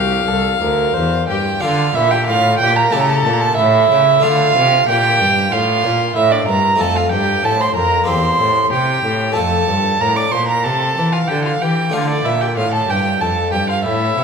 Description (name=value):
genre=classical, baroque-style sonata movement with continuo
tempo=94 BPM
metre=4/4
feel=rubato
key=D minor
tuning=A4 = 441 Hz
part: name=warm violin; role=melody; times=0.0-14.2 s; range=D4 to F5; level=-22 LUFS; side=left 8 dB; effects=none
part: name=warm violin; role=second line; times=0.0-14.2 s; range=G4 to D6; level=-16 LUFS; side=right 5 dB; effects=none
part: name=harpsichord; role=accompaniment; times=0.0-14.2 s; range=C2 to A4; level=-22 LUFS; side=left 4 dB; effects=none
part: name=rich cello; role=bass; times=0.0-14.2 s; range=C2 to E3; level=-20 LUFS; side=equal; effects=none
room=moderate concert hall reverb, RT60 2.3 s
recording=minimal, uncompressed stereo recording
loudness=-13 LUFS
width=side -5 dB against mid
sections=0.0-1.6 A section; 1.6-14.2 A section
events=none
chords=0.0 F; 1.6 Dm; 2.9 A7; 4.2 Dm; 6.8 F; 8.1 C7/E; 9.4 F; 11.9 Dm